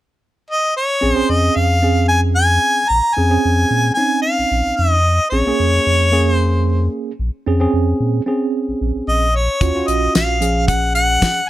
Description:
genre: straight-eighth soul blues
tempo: 112 BPM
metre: 4/4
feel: straight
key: Bb minor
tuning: A4 = 440 Hz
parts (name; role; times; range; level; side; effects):
- warm harmonica; melody; 0.5-11.5 s; Db5 to Bb5; -16 LUFS; left 1 dB; plate reverb
- tine electric piano; accompaniment; 1.0-11.4 s; F3 to Ab4; -20 LUFS; right 3 dB; overdrive, medium stereo tremolo
- pure sine sub bass; bass; 1.0-11.2 s; Bb1 to Bb2; -17 LUFS; left 1 dB; none
- damped 70s drum kit; drums; 9.6-11.4 s; hi-hat, kick drum, snare drum, tambourine; -18 LUFS; left 1 dB; none
room: light reverb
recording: none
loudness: -14 LUFS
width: side -14 dB against mid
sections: 0.0-1.0 A section; 1.0-11.5 B section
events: none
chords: 0.0 N.C.; 1.0 Bbm9; 9.6 Ebm9 (rootless)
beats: 0.49 | 1.03 1.56 2.10 2.64 | 3.17 3.71 4.25 4.78 | 5.32 5.85 6.39 6.93 | 7.46 8.00 8.54 9.07 | 9.61 10.14 10.68 11.22

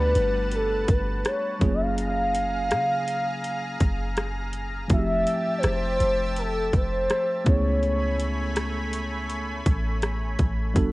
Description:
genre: contemporary R&B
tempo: 82 BPM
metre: 4/4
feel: straight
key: unclear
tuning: A4 = 441 Hz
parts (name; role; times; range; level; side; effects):
- gliding portamento lead; melody; 0.0-8.5 s; A4 to E#5; -26 LUFS; equal; chorus
- tine electric piano; accompaniment; 0.0-10.9 s; F3 to A4; -31 LUFS; right 1 dB; medium stereo tremolo
- lush unison pad; sustained chords; 0.0-10.9 s; G3 to B5; -33 LUFS; equal; chorus
- warm 808-style bass; bass; 0.0-10.9 s; F1 to C#3; -28 LUFS; equal; none
- trap drum kit; drums; 0.2-10.9 s; hi-hat, kick drum, rim click; -25 LUFS; equal; none
room: light reverb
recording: worn, warbling old tape, cassette tape, warbly pitch drift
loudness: -22 LUFS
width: side -20 dB against mid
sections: 0.0-10.9 A section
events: none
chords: 0.0 Gmaj9; 1.6 F#maj9; 4.9 Fmaj9; 7.5 Amaj9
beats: 0.52 1.25 | 1.98 2.71 3.44 4.17 | 4.91 5.64 6.37 7.10 | 7.83 8.56 9.30 10.03 | 10.76

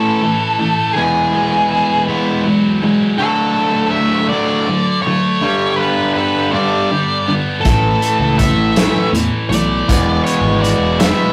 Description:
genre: indie rock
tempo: 54 BPM (dotted quarters)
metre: 6/8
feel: straight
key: A major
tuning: A4 = 440 Hz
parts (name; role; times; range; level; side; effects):
- octave-fuzz lead guitar; melody; 0.0-11.3 s; G#4 to E5; -20 LUFS; equal; distortion
- cranked stack guitar; riff; 0.0-11.3 s; E2 to A4; -23 LUFS; equal; overdrive
- crunchy overdriven guitar; riff; 0.0-11.3 s; G2 to B3; -19 LUFS; equal; none
- growling fingered electric bass; bass; 7.6-11.1 s; E1 to E2; -21 LUFS; equal; overdrive
- loose indie drum kit; drums; 7.7-11.2 s; hi-hat, kick drum, snare drum; -19 LUFS; equal; none
room: wet studio ambience, RT60 0.5 s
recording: rough rehearsal-room recording, warm saturation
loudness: -15 LUFS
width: mono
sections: 0.0-11.3 A section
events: none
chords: 0.0 A; 1.0 Eadd9; 3.2 D; 5.4 Gadd9; 7.7 A; 9.9 Eadd9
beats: | 0.97 2.08 | 3.20 4.31 | 5.42 6.54 | 7.65 8.77 | 9.88 11.00

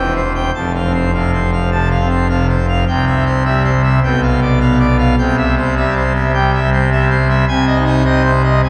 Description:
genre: classical, organ toccata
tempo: 104 BPM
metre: 4/4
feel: straight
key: unclear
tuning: A4 = 440 Hz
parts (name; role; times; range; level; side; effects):
- pipe organ, full organ; solo; 0.0-8.7 s; E1 to A5; -14 LUFS; equal; none
room: wet cathedral reverb, RT60 4.7 s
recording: recorded in a church or concert hall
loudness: -14 LUFS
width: mono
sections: 0.0-8.7 A section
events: none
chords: 0.0 C/E; 0.5 F; 2.9 C; 4.0 G7/B; 5.2 C; 7.5 Ab/C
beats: | 0.54 1.12 1.71 2.29 | 2.87 3.45 4.03 4.61 | 5.18 5.76 6.33 6.91 | 7.48 8.05 8.63

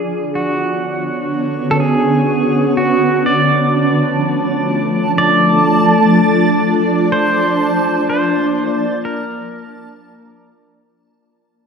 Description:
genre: ambient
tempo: 62 BPM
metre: 4/4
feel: straight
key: unclear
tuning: A4 = 440 Hz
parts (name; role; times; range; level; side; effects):
- pedal steel guitar; melody; 0.0-10.5 s; F#4 to D5; -18 LUFS; right 1 dB; diffuse ambient delay
- shimmering ambient pad; sustained chords; 0.0-11.0 s; D3 to D5; -15 LUFS; equal; chorus, built-in reverb
- backwards swelling texture; texture; 4.1-11.0 s; A5; -21 LUFS; right 4 dB; built-in reverb
room: wet lush hall reverb, RT60 2.7 s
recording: dark, warm production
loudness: -12 LUFS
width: side -6 dB against mid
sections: 0.0-11.0 A section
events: fade-in on ambient pad 0.0-11.0; fade-in on pedal steel guitar 0.0-11.0; fade-out 5.8-11.0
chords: 0.0 Bmadd9; 3.2 Dm; 7.1 Bb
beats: 0.34 1.31 2.27 | 3.24 4.21 5.18 6.14 | 7.11 8.08 9.05 10.02

